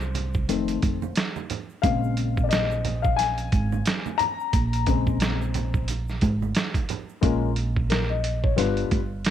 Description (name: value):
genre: hip hop, jazz-hop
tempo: 89 BPM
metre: 4/4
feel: swing 58% on 16ths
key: Bb minor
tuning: A4 = 441 Hz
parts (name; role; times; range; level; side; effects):
- dark upright piano; accompaniment; 0.0-9.0 s; Db3 to Bb5; -27 LUFS; left 10 dB; none
- upright bass; bass; 0.0-9.3 s; F1 to C2; -26 LUFS; right 2 dB; none
- tube shaker and congas; percussion; 0.0-7.2 s; none; -35 LUFS; right 11 dB; none
- trip hop sampler-style drum kit; drums; 0.2-9.3 s; hi-hat, kick drum, snare drum; -26 LUFS; right 2 dB; none
room: light reverb, small room ambience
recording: 1960s-style stereo with parts hard left and right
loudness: -22 LUFS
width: side -10 dB against mid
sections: 0.0-7.2 A section; 7.2-9.3 A section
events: upright piano solo 0.0-7.2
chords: 0.5 F7; 1.8 Bbm7; 8.6 G7